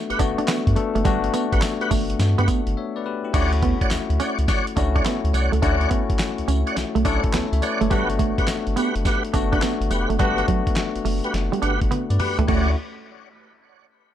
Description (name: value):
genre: R&B, new jack swing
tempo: 105 BPM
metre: 4/4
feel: swing 66% on 16ths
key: D major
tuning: A4 = 440 Hz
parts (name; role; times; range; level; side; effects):
- bell-like tine electric piano; accompaniment; 0.0-12.8 s; A3 to E5; -25 LUFS; left 6 dB; none
- tonewheel organ; stabs; 0.1-12.7 s; G4 to F#5; -28 LUFS; equal; chorus vibrato, slow rotary speaker
- round analog bass; bass; 0.1-12.8 s; F1 to G2; -23 LUFS; equal; none
- dusty soul sampler-style drum kit; drums; 0.1-12.7 s; crash cymbal, handclaps, hi-hat, kick drum, snare drum, tambourine, toms; -24 LUFS; equal; none
- clean electric guitar; riff; 0.2-12.7 s; F#3 to D4; -26 LUFS; right 8 dB; lush chorus
room: digital ambience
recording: dark, warm production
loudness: -19 LUFS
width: side -11 dB against mid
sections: 0.0-3.3 A section; 3.3-12.5 B section; 12.5-14.1 C section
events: break 2.8-3.3; drum fill 11.9-12.5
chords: 0.0 Gmaj7; 3.3 Dmaj7; 7.9 Gmaj7; 12.5 Dmaj7